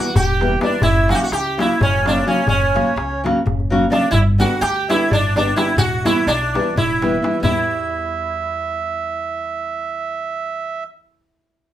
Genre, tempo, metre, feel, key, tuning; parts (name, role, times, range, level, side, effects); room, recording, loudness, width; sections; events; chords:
balkan folk, Balkan wedding band; 255 BPM (eighths); 7/8; straight; E dorian sharp4; A4 = 439 Hz
sitar; melody; 0.0-10.8 s; C#4 to G4; -20 LUFS; right 1 dB
accordion; second line; 0.0-10.8 s; C#5 to G5; -24 LUFS; right 5 dB
nylon-string guitar; accompaniment; 0.0-10.9 s; C#3 to G4; -20 LUFS; left 2 dB
darbuka; percussion; 0.1-7.7 s; -22 LUFS; left 2 dB
upright bass; bass; 0.2-10.8 s; E1 to E2; -23 LUFS; equal
wet studio reverb, RT60 0.5 s; band playing live in one room; -16 LUFS; side -12 dB against mid
0.0-7.4 A section; 7.4-10.7 B section
0.0 Em; 0.8 F#; 4.1 G; 5.8 Em